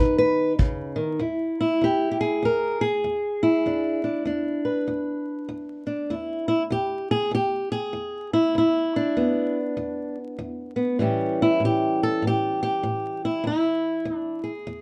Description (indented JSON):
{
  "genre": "acoustic country blues, solo or duo",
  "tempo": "98 BPM",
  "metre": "4/4",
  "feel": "swing 62% on 8ths",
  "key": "unclear",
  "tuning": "A4 = 439 Hz",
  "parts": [
    { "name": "fingerpicked old ladder-braced acoustic guitar", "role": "melody", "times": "0.0-14.8 s", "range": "E2 to B4", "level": "-25 LUFS", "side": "equal", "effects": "none" },
    { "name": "kick drum", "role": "drums", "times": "0.6-0.8 s", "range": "none", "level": "-23 LUFS", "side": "equal", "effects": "none" }
  ],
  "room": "moderate studio ambience, RT60 0.5 s",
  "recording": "dark, warm production, vinyl crackle",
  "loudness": "-25 LUFS",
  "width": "mono",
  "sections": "0.0-1.2 A section; 1.2-14.8 B section",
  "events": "steel-string acoustic guitar solo 0.0-1.2",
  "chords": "0.0 B; 1.2 E7; 11.0 A7; 13.5 E"
}